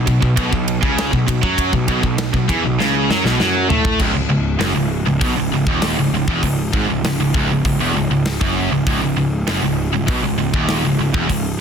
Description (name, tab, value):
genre	heavy metal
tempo	99 BPM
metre	4/4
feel	straight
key	C# minor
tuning	A4 = 440 Hz
part	heavy high-gain guitar	riff	0.0-11.5 s	C#2 to A3	-20 LUFS	right 10 dB	distortion
part	scooped high-gain guitar	riff	0.0-11.5 s	C#2 to A3	-21 LUFS	left 10 dB	distortion
part	fuzz picked electric bass	bass	0.0-11.6 s	C#1 to A2	-22 LUFS	equal	overdrive
part	tight metal drum kit	drums	0.1-11.4 s	crash cymbal, hi-hat, kick drum, ride cymbal, snare drum, toms	-22 LUFS	equal	none
room	small room ambience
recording	dense, heavily limited modern master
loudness	-15 LUFS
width	side -7 dB against mid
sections	0.0-4.0 A section; 4.0-11.6 B section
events	drum fill 2.8-4.0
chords	0.0 B5; 4.0 C#m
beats	0.38 0.98 | 1.59 2.19 2.80 3.40 | 4.01 4.62 5.22 5.83 | 6.44 7.05 7.65 8.26 | 8.87 9.47 10.08 10.69 | 11.29